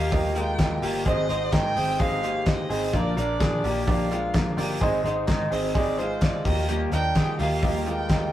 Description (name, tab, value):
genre	jangly indie pop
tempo	128 BPM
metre	4/4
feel	straight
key	Eb major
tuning	A4 = 438 Hz
part	warm violin	melody	0.0-8.3 s	C5 to G5	-30 LUFS	right 1 dB	none
part	bright upright piano	accompaniment	0.0-8.3 s	D4 to F5	-30 LUFS	right 2 dB	none
part	picked steel-string acoustic guitar	accompaniment	0.0-8.3 s	Ab2 to F4	-34 LUFS	equal	none
part	electric guitar through a small old amp	arpeggios	0.0-8.3 s	Ab3 to C5	-29 LUFS	left 1 dB	none
part	vintage muted picked electric bass	bass	0.0-8.3 s	G1 to Eb3	-30 LUFS	equal	none
part	cloth-damped thuddy drum kit	drums	0.1-8.2 s	hi-hat, kick drum, snare drum	-26 LUFS	equal	none
part	group handclap	percussion	0.6-8.2 s	none	-42 LUFS	left 1 dB	none
room	moderate studio reverb, RT60 0.5 s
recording	rough rehearsal-room recording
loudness	-22 LUFS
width	side -12 dB against mid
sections	0.0-8.3 A section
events	none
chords	0.0 Ebadd9; 1.1 Ab; 2.9 Bb; 4.8 Ab; 6.5 Ebadd9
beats	0.12 0.59 | 1.06 1.53 2.00 2.47 | 2.94 3.40 3.87 4.34 | 4.81 5.28 5.75 6.22 | 6.69 7.16 7.63 8.10